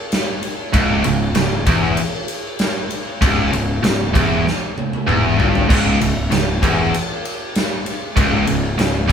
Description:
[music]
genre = heavy metal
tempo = 97 BPM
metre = 4/4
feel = straight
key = C# minor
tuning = A4 = 441 Hz
[part]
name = big rock drum kit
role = drums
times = 0.1-9.1 s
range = crash cymbal, kick drum, ride cymbal, snare drum, toms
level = -19 LUFS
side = equal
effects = none
[part]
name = high-gain distorted guitar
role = riff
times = 0.7-9.1 s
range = C#2 to G2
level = -17 LUFS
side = equal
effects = distortion
[part]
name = fuzz picked electric bass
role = bass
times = 0.7-9.1 s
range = C#1 to G1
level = -22 LUFS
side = equal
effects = overdrive
[sound]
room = moderate stone room reverb, RT60 1.3 s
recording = band playing live in one room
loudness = -15 LUFS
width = side -7 dB against mid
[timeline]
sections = 0.0-9.1 A section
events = drum fill 4.5-5.7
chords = 0.0 C#m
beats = 0.13 | 0.75 1.36 1.98 2.60 | 3.22 3.84 4.45 5.07 | 5.69 6.31 6.93 7.55 | 8.17 8.79

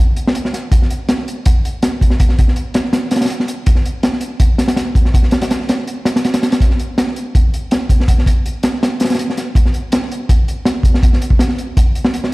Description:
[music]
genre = drum and bass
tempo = 163 BPM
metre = 4/4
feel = straight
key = none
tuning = none
[part]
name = crunchy breakbeat drum kit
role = drums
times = 0.2-12.3 s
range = hi-hat, kick drum, snare drum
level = -12 LUFS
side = equal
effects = none
[sound]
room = light reverb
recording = played on a big sound system in a bare room, stone room reverb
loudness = -13 LUFS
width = side -22 dB against mid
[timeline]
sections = 0.0-12.3 A section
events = none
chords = none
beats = 0.36 | 0.72 1.09 1.46 1.83 | 2.20 2.56 2.93 3.30 | 3.67 4.04 4.41 4.77 | 5.14 5.51 5.88 6.25 | 6.61 6.98 7.35 7.72 | 8.09 8.46 8.82 9.19 | 9.56 9.93 10.29 10.66 | 11.03 11.40 11.77 12.13

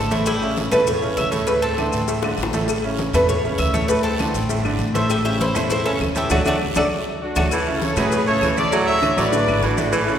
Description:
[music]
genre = latin, salsa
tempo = 199 BPM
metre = 4/4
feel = straight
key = A major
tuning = A4 = 440 Hz
[part]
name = Cuban tres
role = melody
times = 0.0-7.5 s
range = G3 to E5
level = -22 LUFS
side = equal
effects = none
[part]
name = bright baby grand piano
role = accompaniment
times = 0.0-10.2 s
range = A2 to C#5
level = -24 LUFS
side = right 2 dB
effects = none
[part]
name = upright bass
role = bass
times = 0.0-10.2 s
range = G#1 to A2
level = -25 LUFS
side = left 1 dB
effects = none
[part]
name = congas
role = percussion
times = 0.1-10.2 s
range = none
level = -30 LUFS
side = equal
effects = none
[part]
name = cowbell and bongos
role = percussion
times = 0.1-10.1 s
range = none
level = -29 LUFS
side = left 8 dB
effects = none
[part]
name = guiro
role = percussion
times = 0.1-10.2 s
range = none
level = -36 LUFS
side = right 5 dB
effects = none
[part]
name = maracas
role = percussion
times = 0.1-10.2 s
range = none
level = -36 LUFS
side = left 7 dB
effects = none
[part]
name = claves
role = percussion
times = 0.3-10.1 s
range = none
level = -34 LUFS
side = left 5 dB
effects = none
[part]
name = warm horn section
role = melody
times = 7.2-10.2 s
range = D4 to E5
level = -20 LUFS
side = right 1 dB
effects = none
[part]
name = clear baritone saxophone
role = second line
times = 7.5-10.2 s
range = E3 to F#3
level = -24 LUFS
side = right 2 dB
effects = none
[sound]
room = wet concert hall reverb, RT60 2.0 s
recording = recorded in a church or concert hall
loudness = -17 LUFS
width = side -9 dB against mid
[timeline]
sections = 0.0-7.5 A section; 7.5-10.2 B section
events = Cuban tres solo 0.0-7.5; drum fill 2.2-2.7, 6.6-7.5; band accent 6.3-7.5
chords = 0.3 A; 1.5 Dsus2; 2.7 A; 3.9 Dsus2; 5.1 A; 6.3 D; 7.5 A; 8.7 Dadd9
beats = | 0.27 0.57 0.88 1.18 | 1.48 1.78 2.08 2.39 | 2.69 2.99 3.29 3.60 | 3.90 4.20 4.50 4.80 | 5.10 5.40 5.71 6.01 | 6.31 6.61 6.91 7.21 | 7.51 7.82 8.12 8.42 | 8.72 9.02 9.32 9.62 | 9.93

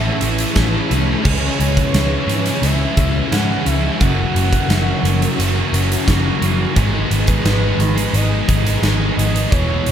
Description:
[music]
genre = rock, shoegaze and dream pop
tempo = 87 BPM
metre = 4/4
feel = straight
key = unclear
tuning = A4 = 440 Hz
[part]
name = gliding portamento lead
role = melody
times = 0.0-9.9 s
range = B4 to F#5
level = -27 LUFS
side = right 1 dB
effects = chorus, ping-pong delay
[part]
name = string machine, violas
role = sustained chords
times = 0.0-9.9 s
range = C#4 to B5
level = -28 LUFS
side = left 1 dB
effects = phaser, ensemble chorus
[part]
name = biting overdriven guitar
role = riff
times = 0.0-9.9 s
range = E2 to G#4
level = -23 LUFS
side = right 8 dB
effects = reverse reverb
[part]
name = thick fuzz guitar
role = riff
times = 0.0-9.9 s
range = E2 to C#4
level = -23 LUFS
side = left 8 dB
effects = distortion, analog chorus
[part]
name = tight distorted guitar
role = riff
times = 0.0-9.9 s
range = E2 to C#4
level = -26 LUFS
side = right 2 dB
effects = distortion
[part]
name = vintage muted picked electric bass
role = bass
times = 0.0-9.9 s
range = E1 to G#2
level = -19 LUFS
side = equal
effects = none
[part]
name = huge arena drum kit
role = drums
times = 0.2-9.9 s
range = crash cymbal, hi-hat, kick drum, snare drum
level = -20 LUFS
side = equal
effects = none
[sound]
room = light reverb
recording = none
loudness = -14 LUFS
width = side -9 dB against mid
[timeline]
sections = 0.0-6.8 A section; 6.8-9.9 B section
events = none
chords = 0.0 Amaj9; 1.2 C#m7; 4.0 F#7; 6.8 G#madd9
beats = 0.55 | 1.24 1.93 2.62 3.31 | 4.00 4.69 5.38 6.07 | 6.76 7.45 8.14 8.83 | 9.52

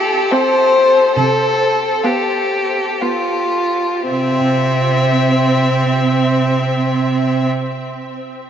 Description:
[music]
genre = classical, slow romantic movement for string quartet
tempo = 54-72 BPM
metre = 3/4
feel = rubato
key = C major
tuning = A4 = 440 Hz
[part]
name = rich violin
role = melody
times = 0.0-7.5 s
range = E5 to F5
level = -25 LUFS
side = left 6 dB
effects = none
[part]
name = rich violin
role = second line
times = 0.0-7.5 s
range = C4 to C5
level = -16 LUFS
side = left 1 dB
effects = none
[part]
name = clear viola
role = accompaniment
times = 0.0-7.5 s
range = B3 to C4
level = -22 LUFS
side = right 2 dB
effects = none
[part]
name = clear cello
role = bass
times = 1.2-7.5 s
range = C3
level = -18 LUFS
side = right 4 dB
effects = none
[sound]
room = wet huge ambient reverb, RT60 7.9 s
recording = in a vast, echoing space, nothing above 7.5 kHz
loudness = -13 LUFS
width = side -9 dB against mid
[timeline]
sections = 0.0-4.1 A section; 4.1-7.2 B section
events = slowing down 0.0-4.1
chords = 0.0 C; 1.2 G7/C; 4.1 C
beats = 0.32 | 1.16 2.04 3.02 | 4.09 5.14 6.18

